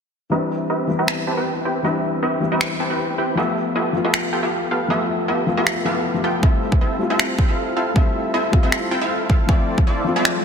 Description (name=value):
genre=future bass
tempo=157 BPM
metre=4/4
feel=half-time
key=C major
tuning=A4 = 440 Hz
part: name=felt-muted upright piano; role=accompaniment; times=0.3-10.4 s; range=E3 to E5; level=-24 LUFS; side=left 4 dB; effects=sidechain pumping, dub echo
part: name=supersaw stab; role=riff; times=0.3-10.4 s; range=B3 to A5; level=-21 LUFS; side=right 1 dB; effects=sidechain pumping, low-pass filter, dub echo
part: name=electronic finger snaps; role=drums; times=1.1-10.3 s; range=none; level=-23 LUFS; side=equal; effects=overdrive, soft clipping on snare
part: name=electronic kick drum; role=drums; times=6.4-9.9 s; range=none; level=-16 LUFS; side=equal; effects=overdrive
part: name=riser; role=sound effects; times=10.0-10.4 s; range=none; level=-30 LUFS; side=left 1 dB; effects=none
room=moderate lush hall reverb, RT60 1.9 s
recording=dense, heavily limited modern master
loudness=-18 LUFS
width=side -6 dB against mid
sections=0.3-10.4 A section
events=filter sweep on supersaw synth 0.3-10.4; riser 10.0-10.4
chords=0.3 Cmaj7; 3.4 G13; 6.4 Fmaj7; 9.5 Dm9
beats=| 0.32 0.70 1.08 1.46 | 1.84 2.23 2.61 2.99 | 3.37 3.76 4.14 4.52 | 4.90 5.29 5.67 6.05 | 6.43 6.81 7.20 7.58 | 7.96 8.34 8.72 9.11 | 9.49 9.87 10.25